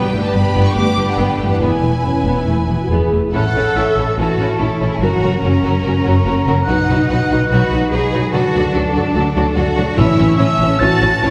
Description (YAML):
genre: cinematic, heroic adventure film score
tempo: 144 BPM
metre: 4/4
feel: straight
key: A major from 3.3 s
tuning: A4 = 439 Hz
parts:
  - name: warm symphonic violin section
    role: melody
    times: 0.0-11.3 s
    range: G#4 to D6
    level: -28 LUFS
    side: equal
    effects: none
  - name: warm symphonic violin section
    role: second line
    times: 0.0-11.3 s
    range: C#4 to C#5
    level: -26 LUFS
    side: equal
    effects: none
  - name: rich symphonic viola section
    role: accompaniment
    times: 0.0-11.3 s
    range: E3 to E4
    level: -24 LUFS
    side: equal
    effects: none
  - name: dark French horn section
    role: sustained chords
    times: 0.0-3.3 s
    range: B3 to G#4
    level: -26 LUFS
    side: equal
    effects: none
  - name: concert harp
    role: arpeggios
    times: 0.0-11.3 s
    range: E2 to B5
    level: -24 LUFS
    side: equal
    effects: none
  - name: clear studio double bass section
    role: bass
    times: 0.1-11.3 s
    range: E1 to D2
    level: -21 LUFS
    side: equal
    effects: none
  - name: rich symphonic cello section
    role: bass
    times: 0.1-11.3 s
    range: E2 to A4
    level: -22 LUFS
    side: equal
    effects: none
  - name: small flute group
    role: second line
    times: 3.3-11.3 s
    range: G#5 to A6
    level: -24 LUFS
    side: equal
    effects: none
  - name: timpani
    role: percussion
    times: 10.0-10.6 s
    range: A2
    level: -22 LUFS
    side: equal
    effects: none
room: wet scoring stage reverb, RT60 1.8 s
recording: heard from further back in the room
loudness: -15 LUFS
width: mono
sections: 0.0-3.3 A section; 3.3-11.3 B section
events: none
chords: 0.0 G; 1.6 E; 3.3 A; 5.0 F#; 6.7 B; 8.3 D; 10.0 A